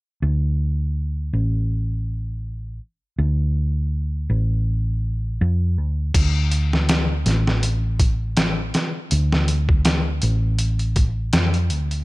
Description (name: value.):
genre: trip hop.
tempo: 81 BPM.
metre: 4/4.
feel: swing 56% on 16ths.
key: D minor.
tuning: A4 = 441 Hz.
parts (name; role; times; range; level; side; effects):
hollow-body short-scale fingered electric bass; bass; 0.2-12.0 s; A1 to F2; -20 LUFS; equal; none.
trip hop sampler-style drum kit; drums; 6.1-12.0 s; crash cymbal, hi-hat, kick drum, snare drum; -20 LUFS; equal; vintage 12-bit sampler grit, studio reverb.
room: digital ambience.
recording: none.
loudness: -19 LUFS.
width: side -21 dB against mid.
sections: 0.2-6.1 A section; 6.1-12.0 B section.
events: none.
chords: none.